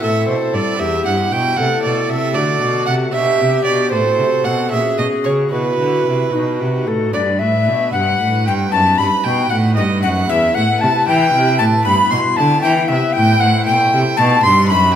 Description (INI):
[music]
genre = classical, baroque-style sonata movement with continuo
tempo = 77 BPM (dotted quarters)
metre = 6/8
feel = straight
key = E minor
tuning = A4 = 440 Hz
[part]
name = tenor recorder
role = melody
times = 0.0-14.9 s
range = D#4 to C6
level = -18 LUFS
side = left 5 dB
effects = none
[part]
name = warm violin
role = second line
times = 0.0-14.9 s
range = B4 to C6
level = -18 LUFS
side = right 5 dB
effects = none
[part]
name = pipe organ, cornet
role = accompaniment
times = 0.0-14.9 s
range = E2 to C5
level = -22 LUFS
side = left 1 dB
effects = none
[part]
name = rich cello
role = bass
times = 0.0-15.0 s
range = E2 to E3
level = -19 LUFS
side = right 1 dB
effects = none
[sound]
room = wet recital hall reverb, RT60 1.4 s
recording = none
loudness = -13 LUFS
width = side -9 dB against mid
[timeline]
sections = 0.0-7.1 A section; 7.1-15.0 B section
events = none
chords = 0.0 Am; 0.8 Em; 1.6 Am; 2.4 D; 3.1 G/B; 3.9 F#dim/A; 4.7 F#/A#; 5.5 Bsus4; 6.3 B; 7.1 G; 8.7 B7/F#; 10.3 Em; 11.9 Em/G; 13.4 Am13; 14.2 B